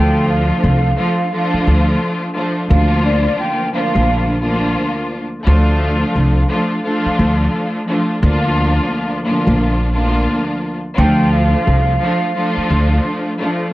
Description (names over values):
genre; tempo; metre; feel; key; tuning
hip hop, boom-bap hip-hop; 87 BPM; 4/4; swing 61% on 16ths; D minor; A4 = 440 Hz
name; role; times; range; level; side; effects
breathy mellow jazz flute; melody; 0.0-4.3, 11.0-13.0 s; D5 to G5; -21 LUFS; right 2 dB; high-pass filter, low-pass filter, slapback echo
rich studio string section; accompaniment; 0.0-13.7 s; D2 to F4; -17 LUFS; equal; cassette tape, high-pass filter, low-pass filter
upright bass; bass; 0.0-13.0 s; Bb1 to D2; -14 LUFS; equal; none
room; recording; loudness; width
moderate studio ambience, RT60 0.5 s; worn, warbling old tape, cassette tape, warbly pitch drift; -13 LUFS; side -17 dB against mid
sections
0.0-13.7 A section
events
none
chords
0.0 Dm; 2.7 Bb; 5.5 Dm; 8.2 Bb; 11.0 Dm